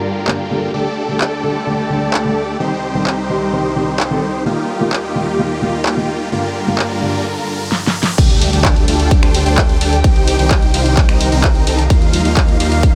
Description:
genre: EDM, festival progressive house.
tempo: 129 BPM.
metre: 4/4.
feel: straight.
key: unclear.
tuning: A4 = 438 Hz.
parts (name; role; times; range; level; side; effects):
muted studio string section; sustained chords; 0.0-12.9 s; C2 to G5; -25 LUFS; equal; sidechain pumping.
big supersaw lead; riff; 0.0-12.9 s; D3 to D5; -22 LUFS; equal; phaser, sidechain pumping, low-pass filter, dub echo.
dark concert grand piano; accompaniment; 0.3-7.1 s; G2 to A4; -23 LUFS; equal; sidechain pumping, dub echo.
pop drum kit; drums; 0.3-12.9 s; crash cymbal, finger snaps, handclaps, hi-hat, ride cymbal, snare drum; -22 LUFS; equal; none.
riser and impact; sound effects; 6.6-10.0 s; none; -29 LUFS; equal; none.
detuned saw bass; bass; 8.2-12.9 s; C2 to Eb2; -19 LUFS; equal; chorus, sidechain pumping.
electronic kick drum; drums; 8.2-12.9 s; none; -14 LUFS; equal; none.
room: light reverb.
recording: none.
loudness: -15 LUFS.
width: mono.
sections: 0.0-8.2 A section; 8.2-12.9 B section.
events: riser 6.6-8.2; drum fill 7.7-8.2; drop 8.2-12.9; impact 8.2-10.0.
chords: 0.0 Gm7; 0.7 Dsus4; 2.6 Cm; 4.5 Ebadd9; 6.3 Gm7; 8.2 Dsus4; 10.0 Cm; 11.9 Ebadd9.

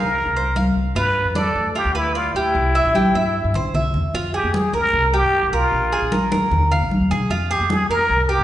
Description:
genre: latin, Cuban son and guajira.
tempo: 151 BPM.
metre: 4/4.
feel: straight.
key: F minor.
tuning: A4 = 440 Hz.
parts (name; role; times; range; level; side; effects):
trumpet with plunger mute; melody; 0.0-8.4 s; E4 to B4; -20 LUFS; equal; none.
Cuban tres; arpeggios; 0.0-8.4 s; F4 to F5; -22 LUFS; right 1 dB; none.
upright bass; bass; 0.0-8.4 s; Bb1 to G2; -23 LUFS; equal; none.
congas; percussion; 0.2-8.4 s; none; -24 LUFS; left 1 dB; none.
room: wet recital hall reverb, RT60 1.5 s.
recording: recorded in a church or concert hall, nothing above 10.8 kHz.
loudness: -17 LUFS.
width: side -12 dB against mid.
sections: 0.0-4.1 A section; 4.1-8.4 B section.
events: drum fill 2.9-4.1.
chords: 0.0 F5; 1.0 G7; 2.5 C; 4.1 Fm; 4.9 C5; 5.7 Bb5; 6.5 Ebsus2; 7.3 Fm.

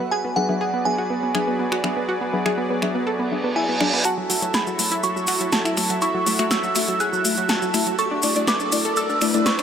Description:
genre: progressive house.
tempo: 122 BPM.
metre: 4/4.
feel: straight.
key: F# minor.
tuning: A4 = 441 Hz.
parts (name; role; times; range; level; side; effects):
glassy synth bell; melody; 0.0-9.6 s; F#5 to F#6; -25 LUFS; right 2 dB; chorus, low-pass filter, digital delay.
supersaw pad; sustained chords; 0.0-9.6 s; F#3 to E5; -28 LUFS; equal; none.
analog pluck; arpeggios; 0.0-9.6 s; F#3 to B4; -26 LUFS; right 1 dB; chorus, digital delay.
deep mellow chord stab; stabs; 0.4-9.5 s; F#3 to E5; -27 LUFS; left 4 dB; chorus, digital delay.
deep house drum kit; drums; 1.3-9.6 s; finger snaps, hi-hat, snare drum; -25 LUFS; equal; overdrive.
reverse cymbal and riser; sound effects; 3.3-9.6 s; none; -30 LUFS; right 2 dB; none.
cabasa; percussion; 4.0-9.6 s; none; -29 LUFS; left 3 dB; none.
room: light reverb, digital ambience.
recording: none.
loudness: -19 LUFS.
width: side -8 dB against mid.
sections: 0.0-4.1 A section; 4.1-9.6 B section.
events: reverse cymbal 3.3-4.1; build-up 4.1-9.6; filter sweep on synth stab 4.1-9.6; filter sweep on synth bell 4.1-9.6.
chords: 0.1 E7/F#; 4.1 F#m7; 8.0 Dsus2/F#.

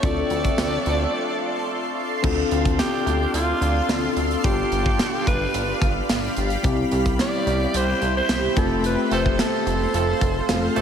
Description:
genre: 1980s-style pop.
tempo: 109 BPM.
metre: 4/4.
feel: straight.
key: unclear.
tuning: A4 = 439 Hz.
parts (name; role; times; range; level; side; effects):
breathy alto saxophone; melody; 0.0-10.8 s; F4 to D5; -26 LUFS; right 1 dB; tape echo.
tine electric piano; accompaniment; 0.0-10.8 s; G3 to F5; -26 LUFS; left 4 dB; wide subtle chorus.
shimmering ambient pad; sustained chords; 0.0-10.8 s; G4 to C6; -28 LUFS; right 1 dB; chorus, built-in reverb, phaser.
clear horn section; stabs; 0.0-1.9, 9.1-10.8 s; F3 to A4; -31 LUFS; right 3 dB; tape echo.
chorused synth bass; bass; 0.0-10.8 s; F1 to D2; -26 LUFS; equal; none.
modern studio drum kit; drums; 0.0-10.8 s; crash cymbal, hi-hat, kick drum, snare drum, tambourine; -25 LUFS; right 1 dB; none.
room: moderate lush hall reverb, RT60 2.9 s.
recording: dreamy mix soaked in reverb.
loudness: -19 LUFS.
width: side -8 dB against mid.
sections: 0.0-2.2 A section; 2.2-10.8 B section.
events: break 1.1-2.2; band accent 8.8-10.8; tine electric piano fill 10.2-10.8.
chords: 0.0 Dm7; 4.4 G7; 6.6 Cmaj7; 8.6 F.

